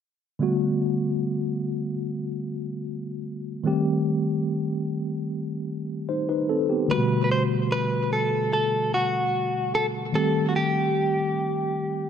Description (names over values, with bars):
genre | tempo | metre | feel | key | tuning
R&B | 74 BPM | 4/4 | straight | G major | A4 = 437 Hz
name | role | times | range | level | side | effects
mellow tine electric piano | accompaniment | 0.4-12.1 s | B2 to C5 | -24 LUFS | equal | medium stereo tremolo
direct-recorded clean electric guitar | melody | 6.9-12.1 s | F#4 to C5 | -24 LUFS | equal | digital delay
room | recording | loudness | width
moderate plate reverb, RT60 3.1 s | dark, warm production | -23 LUFS | side -8 dB against mid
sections
0.4-6.9 A section; 6.9-12.1 B section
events
none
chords
0.4 Gmaj9; 3.7 Cm6; 6.9 Gmaj9; 10.1 Cm6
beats
| 0.41 1.22 2.03 2.84 | 3.65 4.46 5.27 6.08 | 6.89 7.71 8.52 9.33 | 10.14 10.95 11.76